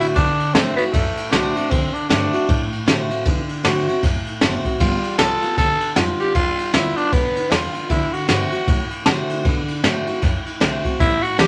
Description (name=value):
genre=rockabilly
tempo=155 BPM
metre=4/4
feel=swing 60% on 8ths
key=D mixolydian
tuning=A4 = 442 Hz
part: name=growling tenor saxophone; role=melody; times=0.0-11.5 s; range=A3 to A4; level=-23 LUFS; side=equal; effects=none
part: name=picked steel-string acoustic guitar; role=accompaniment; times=0.0-11.5 s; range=A2 to F#4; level=-26 LUFS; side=equal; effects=none
part: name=upright bass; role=bass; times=0.0-11.5 s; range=F#1 to C3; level=-30 LUFS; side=equal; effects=none
part: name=jazz brush drum kit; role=drums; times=0.0-11.5 s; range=kick drum, ride cymbal, snare drum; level=-22 LUFS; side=equal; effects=none
room=moderate studio reverb, RT60 0.5 s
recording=none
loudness=-19 LUFS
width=mono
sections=0.0-11.5 A section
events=none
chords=0.0 D7; 4.8 G7; 7.9 D7